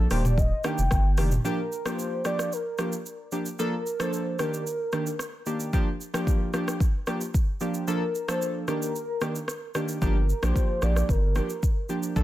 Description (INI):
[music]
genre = afrobeats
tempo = 112 BPM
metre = 4/4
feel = straight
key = G minor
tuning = A4 = 440 Hz
[part]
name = warm analog keys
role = accompaniment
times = 0.0-12.2 s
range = Eb3 to A4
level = -29 LUFS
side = equal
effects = chorus
[part]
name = saturated sub bass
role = bass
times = 0.0-1.4, 10.0-12.2 s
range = Eb1 to Bb1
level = -24 LUFS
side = equal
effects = none
[part]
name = warm velvety synth lead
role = melody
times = 0.1-12.2 s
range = Bb4 to G5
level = -32 LUFS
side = equal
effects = chorus
[part]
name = afro-pop drum kit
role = drums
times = 0.1-12.2 s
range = hi-hat, kick drum, rim click, shaker, toms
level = -28 LUFS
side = equal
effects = none
[sound]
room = little or no reverb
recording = none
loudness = -24 LUFS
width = side -14 dB against mid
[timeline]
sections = 0.0-1.4 A section; 1.4-12.2 B section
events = break 7.9-10.0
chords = 0.1 Ebmaj7; 1.4 Gm7; 3.6 Bbmaj7; 4.4 Ebmaj7; 5.7 Gm7; 7.9 Bbmaj7; 8.7 Ebmaj7; 10.0 Gm7